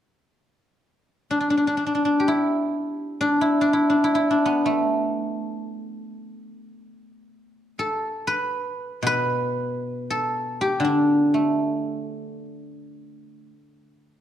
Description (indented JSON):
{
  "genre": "chinese traditional",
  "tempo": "free time",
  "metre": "none",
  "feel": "none",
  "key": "D zhi mode",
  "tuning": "A4 = 438 Hz",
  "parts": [
    { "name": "guzheng", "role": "solo", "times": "1.3-14.0 s", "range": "B2 to B4", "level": "-21 LUFS", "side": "equal", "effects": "none" }
  ],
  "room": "moderate recital hall reverb, RT60 1.7 s",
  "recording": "dark, warm production",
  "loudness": "-20 LUFS",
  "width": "side -11 dB against mid",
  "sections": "0.7-14.2 A section",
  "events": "none",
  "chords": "none"
}